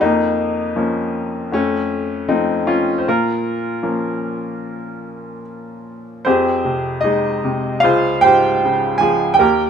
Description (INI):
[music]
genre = classical, lyrical solo piano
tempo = 78 BPM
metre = 4/4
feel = rubato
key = Bb minor, F minor from 6.3 s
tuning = A4 = 436 Hz
[part]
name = bright upright piano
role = solo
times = 0.0-9.7 s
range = Db2 to Ab5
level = -16 LUFS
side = equal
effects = none
[sound]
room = light reverb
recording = none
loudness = -15 LUFS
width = side -7 dB against mid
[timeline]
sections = 0.0-6.3 A section; 6.3-9.7 B section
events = none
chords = 0.0 Bbm/F; 1.5 F7; 3.1 Bbm; 6.3 Fmadd9; 7.8 Dbmaj7